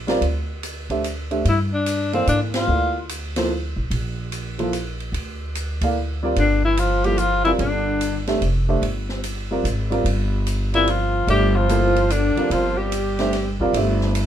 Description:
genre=modal jazz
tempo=146 BPM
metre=3/4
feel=swing 65% on 8ths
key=G dorian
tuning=A4 = 441 Hz
part: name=upright bass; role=bass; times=0.0-14.3 s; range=F1 to Ab2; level=-23 LUFS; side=equal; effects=none
part: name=warm baby grand piano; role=accompaniment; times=0.1-14.3 s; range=E3 to F5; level=-23 LUFS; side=right 2 dB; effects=none
part: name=open jazz drum kit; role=drums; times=0.1-14.3 s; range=hi-hat, kick drum, ride cymbal, snare drum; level=-31 LUFS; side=right 1 dB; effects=none
part: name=breathy tenor saxophone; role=melody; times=1.5-3.1, 6.4-8.2, 10.7-13.6 s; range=C4 to G4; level=-22 LUFS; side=left 3 dB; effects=none
part: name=mellow alto saxophone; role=second line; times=6.4-8.2, 10.8-13.6 s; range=D3 to G3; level=-25 LUFS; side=right 2 dB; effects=none
room=light reverb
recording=minimal, uncompressed stereo recording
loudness=-19 LUFS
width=side -10 dB against mid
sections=0.0-14.3 A section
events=band accent 2.5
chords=0.0 Gm9

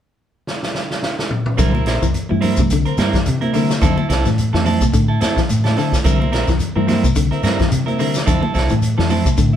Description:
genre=afrobeat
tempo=108 BPM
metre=4/4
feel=swing 55% on 16ths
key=C mixolydian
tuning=A4 = 439 Hz
part: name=vintage drum kit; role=drums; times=0.5-9.5 s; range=hi-hat, kick drum, snare drum, toms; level=-20 LUFS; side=equal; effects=none
part: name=clean electric guitar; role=arpeggios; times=1.6-9.6 s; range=C3 to E3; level=-22 LUFS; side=left 7 dB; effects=none
part: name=clean electric guitar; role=stabs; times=1.6-9.6 s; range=G3 to Bb4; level=-22 LUFS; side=right 4 dB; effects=none
part: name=deep dub fingered electric bass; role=bass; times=1.6-9.6 s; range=Bb1 to C3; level=-19 LUFS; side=equal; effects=none
part: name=congas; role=percussion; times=1.6-9.3 s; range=none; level=-23 LUFS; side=right 2 dB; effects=none
part: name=shekere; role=percussion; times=1.6-9.5 s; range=none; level=-29 LUFS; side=left 2 dB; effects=none
room=moderate studio reverb, RT60 0.9 s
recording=band playing live in one room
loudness=-15 LUFS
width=side -10 dB against mid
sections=0.0-1.6 A section; 1.6-9.6 B section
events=drum fill 0.5-1.6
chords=0.0 N.C.; 1.6 C7; 3.8 Fmaj7; 6.1 C7; 8.3 Fmaj7

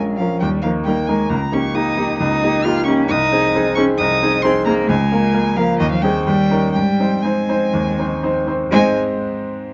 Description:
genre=quick classical-period movement for piano trio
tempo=120-136 BPM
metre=4/4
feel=rubato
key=Ab major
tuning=A4 = 440 Hz
part: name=clear violin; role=melody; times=0.0-9.0 s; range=Eb5 to F6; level=-25 LUFS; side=equal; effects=none
part: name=clear cello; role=second line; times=0.0-9.0 s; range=Eb3 to F4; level=-22 LUFS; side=equal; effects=none
part: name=bright baby grand piano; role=accompaniment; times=0.0-9.7 s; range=Bb1 to Eb5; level=-20 LUFS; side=equal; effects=none
room=light reverb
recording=dark, warm production, nothing above 7.6 kHz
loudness=-17 LUFS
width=mono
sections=0.0-8.7 A section; 8.7-9.7 B section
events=none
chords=0.4 Eb5; 1.3 Eb7/Db; 3.1 Ab/C; 4.9 Bbm7/Db; 5.8 Ab/Eb; 6.3 Eb7; 6.8 Ab

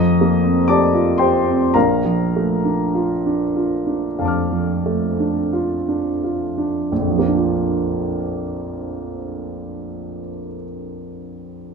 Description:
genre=classical, impressionist solo piano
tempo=42-67 BPM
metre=4/4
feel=rubato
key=Bb major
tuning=A4 = 440 Hz
part: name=warm baby grand piano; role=solo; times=0.0-11.7 s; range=Bb1 to F6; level=-18 LUFS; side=equal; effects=none
room=light reverb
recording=close, detailed microphones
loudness=-17 LUFS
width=side -5 dB against mid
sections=0.0-6.9 A section; 6.9-11.7 B section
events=slowing down 0.0-6.9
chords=0.0 F9sus4; 1.7 Bbmaj7; 6.9 Bb

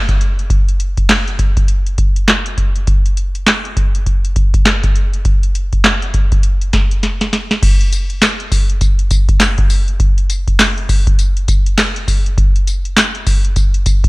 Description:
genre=R&B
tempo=101 BPM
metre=4/4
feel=swing 60% on 16ths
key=none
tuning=none
part: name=booming analog drum machine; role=drums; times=0.1-14.1 s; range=crash cymbal, handclaps, hi-hat, kick drum, snare drum, tambourine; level=-12 LUFS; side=equal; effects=none
room=digital ambience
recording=none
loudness=-12 LUFS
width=side -23 dB against mid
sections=0.0-7.6 A section; 7.6-14.1 B section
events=drum fill 7.0-7.6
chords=none

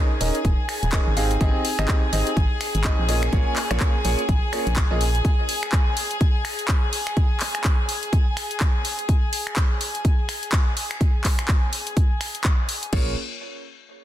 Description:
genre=piano house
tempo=125 BPM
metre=4/4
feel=swing 58% on 16ths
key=Bb dorian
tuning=A4 = 442 Hz
part: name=warm studio violin section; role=sustained chords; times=0.0-12.9 s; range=Ab4 to Ab5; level=-29 LUFS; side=left 1 dB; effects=sidechain pumping
part: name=clear grand piano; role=riff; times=0.0-5.0, 12.9-13.1 s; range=Bb3 to F5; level=-28 LUFS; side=right 1 dB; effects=sidechain pumping, digital delay
part: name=organ-like FM bass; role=bass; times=0.2-5.2, 12.9-13.2 s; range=Eb1 to Bb1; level=-24 LUFS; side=equal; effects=tube saturation, sidechain pumping
part: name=house drum kit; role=drums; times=0.2-13.0 s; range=crash cymbal, finger snaps, handclaps, hi-hat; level=-27 LUFS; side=left 1 dB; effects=soft clipping on snare
part: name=electronic kick drum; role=drums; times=0.4-13.0 s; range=none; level=-20 LUFS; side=equal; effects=none
room=light reverb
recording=dense, heavily limited modern master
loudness=-20 LUFS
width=side -12 dB against mid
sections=0.0-12.9 A section; 12.9-14.0 B section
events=none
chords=0.0 Eb7sus4; 1.2 Abmaj7; 3.1 Bbm7; 5.2 N.C.; 12.9 Bbm7

